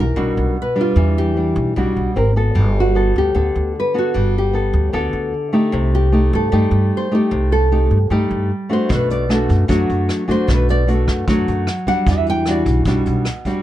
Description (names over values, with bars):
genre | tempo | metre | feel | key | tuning
bossa nova | 151 BPM | 4/4 | straight | G major | A4 = 439 Hz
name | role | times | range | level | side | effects
nylon-string guitar | melody | 0.0-12.6 s | F4 to G5 | -21 LUFS | equal | none
nylon-string guitar | accompaniment | 0.0-13.6 s | B2 to Bb4 | -19 LUFS | equal | none
upright bass | bass | 0.0-13.2 s | G1 to G2 | -18 LUFS | equal | none
vintage brush drum kit | drums | 8.9-13.5 s | hi-hat, kick drum, rim click | -24 LUFS | equal | none
room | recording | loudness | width
little or no reverb | dark, warm production | -15 LUFS | side -13 dB against mid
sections
0.0-13.6 A section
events
nylon-string guitar solo 0.0-13.6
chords
0.0 Em9; 2.2 Abmaj9; 2.6 Gmaj9; 5.7 Cm6; 8.9 Bm7; 12.1 Em9